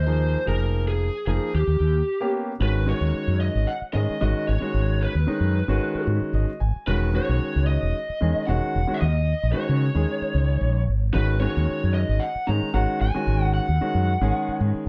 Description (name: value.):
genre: electric jazz fusion.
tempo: 112 BPM.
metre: 4/4.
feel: straight.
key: G# minor.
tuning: A4 = 438 Hz.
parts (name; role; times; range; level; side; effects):
lead guitar through a small cranked amp; melody; 0.0-14.6 s; G4 to A#5; -31 LUFS; equal; overdrive, slapback echo.
mellow fretless electric bass; bass; 0.0-14.9 s; E1 to C#3; -24 LUFS; equal; ensemble chorus.
clear concert grand piano; accompaniment; 0.1-14.9 s; D#3 to G#5; -30 LUFS; equal; none.
room: light reverb, small room ambience.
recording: dark, warm production.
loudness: -23 LUFS.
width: mono.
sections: 0.0-2.6 A section; 2.6-14.9 B section.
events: break 2.1-2.6; grand piano fill 6.1-6.9.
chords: 0.5 Fm7; 1.5 Eb7b13; 2.6 G#m7; 6.9 Emaj9; 9.0 D#m7; 11.1 G#5.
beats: | 0.47 1.01 1.54 2.08 | 2.61 3.15 3.68 4.21 | 4.75 5.28 5.81 6.34 | 6.88 7.41 7.95 8.48 | 9.01 9.54 10.08 10.61 | 11.14 11.68 12.21 12.74 | 13.28 13.81 14.34 14.88.